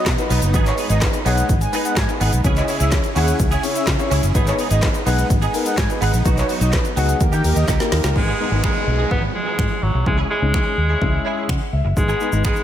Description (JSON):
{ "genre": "dance-pop", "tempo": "126 BPM", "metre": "4/4", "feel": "straight", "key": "G# minor", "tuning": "A4 = 440 Hz", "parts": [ { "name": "expressive synth lead", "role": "melody", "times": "0.0-7.7 s", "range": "C#5 to G#5", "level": "-26 LUFS", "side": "equal", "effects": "chorus, sidechain pumping, slapback echo, tape echo" }, { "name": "supersaw pad", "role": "sustained chords", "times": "0.0-8.2 s", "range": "C#3 to A#4", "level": "-28 LUFS", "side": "right 1 dB", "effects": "sidechain pumping" }, { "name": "direct-recorded clean electric guitar", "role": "riff", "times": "0.0-12.6 s", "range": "F#3 to G#4", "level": "-28 LUFS", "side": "right 6 dB", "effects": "ensemble chorus, slapback echo" }, { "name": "vintage muted fingered electric bass", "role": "bass", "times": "0.1-12.5 s", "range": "F#1 to D#3", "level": "-19 LUFS", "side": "equal", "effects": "sidechain pumping" }, { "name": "deep house drum kit", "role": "drums", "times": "0.1-12.6 s", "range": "finger snaps, handclaps, hi-hat, kick drum, shaker, snare drum", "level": "-21 LUFS", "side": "equal", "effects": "none" }, { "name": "group handclap", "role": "percussion", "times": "0.1-7.8 s", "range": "none", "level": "barely audible", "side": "none", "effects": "none" }, { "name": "warm concert grand piano", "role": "accompaniment", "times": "0.2-12.6 s", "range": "G#3 to G#5", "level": "-25 LUFS", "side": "left 4 dB", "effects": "sidechain pumping, slapback echo" }, { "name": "bright alto saxophone", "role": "melody", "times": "8.2-12.6 s", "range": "F#3 to B3", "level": "-23 LUFS", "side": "equal", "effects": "slapback echo, tape echo" }, { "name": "downlifter", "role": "sound effects", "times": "8.2-12.0 s", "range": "none", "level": "-30 LUFS", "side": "right 2 dB", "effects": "slapback echo" } ], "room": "light reverb, digital ambience", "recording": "none", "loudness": "-16 LUFS", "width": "side -10 dB against mid", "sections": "0.0-8.2 A section; 8.2-12.6 B section", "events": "drop 0.0-8.2; drum fill 7.7-8.2; grand piano fill 11.0-12.0", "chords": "0.0 B; 0.5 G#m; 2.4 C#m; 4.3 G#m; 6.3 B; 7.2 D#; 8.2 G#m; 10.1 C#m; 12.0 G#m" }